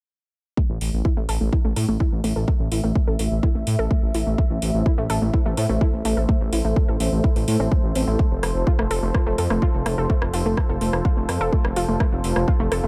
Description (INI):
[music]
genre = melodic techno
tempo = 126 BPM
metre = 4/4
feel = straight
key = A minor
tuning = A4 = 440 Hz
[part]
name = dark analog pad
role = sustained chords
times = 0.6-12.9 s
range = A3 to E5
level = -31 LUFS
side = equal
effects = chorus, sidechain pumping
[part]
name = warbly dusty pluck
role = arpeggios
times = 0.6-12.9 s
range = A3 to A4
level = -30 LUFS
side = equal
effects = chorus, sidechain pumping, tape echo
[part]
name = electronic kick drum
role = drums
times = 0.6-12.6 s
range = none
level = -23 LUFS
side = equal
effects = none
[part]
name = dark detuned saw bass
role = bass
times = 0.7-12.9 s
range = F1 to A2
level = -26 LUFS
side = equal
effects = sidechain pumping
[part]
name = house drum kit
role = drums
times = 0.8-12.8 s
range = hi-hat, rim click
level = -33 LUFS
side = equal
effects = sidechain pumping on hats
[sound]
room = little or no reverb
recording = none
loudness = -21 LUFS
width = mono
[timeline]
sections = 0.6-12.9 A section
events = filter sweep on synth arpeggio sound 0.6-12.9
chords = 0.6 Am; 8.2 F